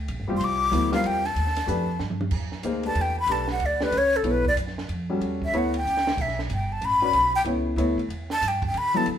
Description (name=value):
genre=modal jazz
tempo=187 BPM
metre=3/4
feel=swing 64% on 8ths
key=E dorian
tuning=A4 = 438 Hz
part: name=upright bass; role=bass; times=0.0-9.2 s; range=F1 to D3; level=-29 LUFS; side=right 1 dB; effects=none
part: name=compact cocktail drum kit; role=drums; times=0.1-9.2 s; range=crash cymbal, hi-hat, kick drum, ride cymbal, snare drum, toms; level=-35 LUFS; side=right 2 dB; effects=none
part: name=warm baby grand piano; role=accompaniment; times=0.3-9.1 s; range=F#3 to D5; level=-27 LUFS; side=left 2 dB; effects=none
part: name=breathy mellow silver concert flute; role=melody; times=0.4-9.1 s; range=A4 to D6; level=-23 LUFS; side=left 1 dB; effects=none
room=wet studio reverb, RT60 0.8 s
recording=band playing live in one room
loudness=-22 LUFS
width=side -9 dB against mid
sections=0.0-2.3 A section; 2.3-9.2 B section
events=drum fill 2.0-2.3, 5.9-6.2; flute solo 2.3-9.2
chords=0.0 C9sus4; 1.4 B7alt; 2.3 Em9